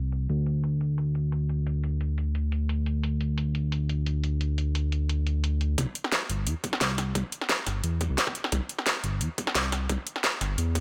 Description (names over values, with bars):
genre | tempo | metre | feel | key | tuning
liquid drum and bass | 175 BPM | 4/4 | swing 53% on 16ths | C major | A4 = 441 Hz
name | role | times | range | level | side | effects
smooth synth bass | bass | 0.0-10.8 s | G1 to E2 | -28 LUFS | equal | none
pop drum kit | drums | 0.1-10.8 s | hi-hat, snare drum | -31 LUFS | equal | high-pass filter on hats, low-pass filter on hats, high-pass filter on snare, low-pass filter on snare
electronic kick drum | drums | 5.8-10.8 s | none | -36 LUFS | equal | high-pass filter on kick
room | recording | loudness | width
light reverb | low-pass filter | -28 LUFS | mono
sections
0.0-5.8 A section; 5.8-10.8 B section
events
filter sweep 0.0-5.8; build-up 5.8-10.8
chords
none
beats
| 0.29 0.64 0.98 1.32 | 1.67 2.01 2.35 2.69 | 3.04 3.38 3.72 4.07 | 4.41 4.75 5.09 5.44 | 5.78 6.12 6.47 6.81 | 7.15 7.50 7.84 8.18 | 8.52 8.87 9.21 9.55 | 9.89 10.24 10.58